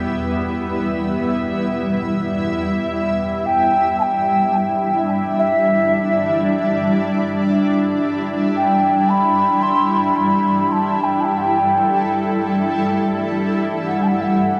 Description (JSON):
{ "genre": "ambient", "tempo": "free time", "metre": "none", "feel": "none", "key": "E minor", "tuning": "A4 = 440 Hz", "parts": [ { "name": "granular cloud pad", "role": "sustained chords", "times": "0.0-14.6 s", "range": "E2 to E5", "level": "-21 LUFS", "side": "equal", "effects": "built-in reverb, vintage 12-bit sampler grit" }, { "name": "mellow hollow wooden flute", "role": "melody", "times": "2.9-14.6 s", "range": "E5 to C6", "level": "-20 LUFS", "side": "equal", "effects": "dub echo" } ], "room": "moderate plate reverb, RT60 2.9 s", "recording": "echo-heavy mix", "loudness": "-18 LUFS", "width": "mono", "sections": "0.0-14.6 A section", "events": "none", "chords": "0.0 C/E (rootless); 2.9 Em7" }